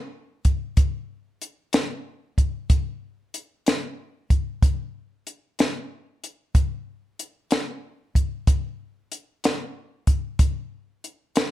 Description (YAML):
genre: blues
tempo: 62 BPM (dotted quarters)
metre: 12/8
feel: straight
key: none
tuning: none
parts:
  - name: compact cocktail drum kit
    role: drums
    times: 0.4-11.5 s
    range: hi-hat, kick drum, snare drum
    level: -20 LUFS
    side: equal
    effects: none
room: light reverb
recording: none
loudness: -22 LUFS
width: side -14 dB against mid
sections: 0.0-11.5 A section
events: none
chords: none